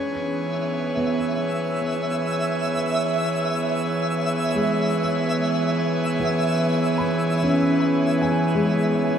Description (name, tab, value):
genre	ambient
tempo	free time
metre	none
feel	none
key	unclear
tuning	A4 = 441 Hz
part	airy breathy pad	sustained chords	0.0-9.2 s	E3 to C#5	-22 LUFS	equal	chorus
part	felt-muted upright piano	arpeggios	0.0-9.2 s	G#3 to B5	-27 LUFS	equal	tape echo
part	twinkling granular texture	texture	0.5-9.2 s	E5	-27 LUFS	right 1 dB	built-in reverb
room	wet plate reverb, RT60 2.9 s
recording	echo-heavy mix, cassette tape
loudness	-20 LUFS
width	side -8 dB against mid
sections	0.0-9.2 A section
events	fade-in on analog synth pad 0.0-9.2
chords	0.0 C#m7